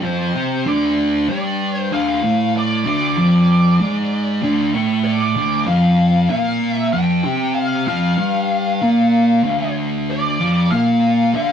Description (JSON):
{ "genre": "metal", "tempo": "96 BPM", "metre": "4/4", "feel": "straight", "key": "D minor", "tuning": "A4 = 440 Hz", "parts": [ { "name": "fuzz lead guitar", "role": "melody", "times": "0.0-11.5 s", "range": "C5 to G5", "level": "-21 LUFS", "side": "left 2 dB", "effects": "wah, distortion" }, { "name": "thick fuzz guitar", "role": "riff", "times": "0.0-11.5 s", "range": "D2 to D4", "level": "-16 LUFS", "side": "equal", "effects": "distortion" } ], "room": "wet small room reverb, RT60 0.6 s", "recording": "rough rehearsal-room recording", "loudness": "-15 LUFS", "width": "side -8 dB against mid", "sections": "0.7-11.5 A section", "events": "none", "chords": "0.0 N.C.; 0.7 Dm; 5.7 F5; 10.7 Bb5" }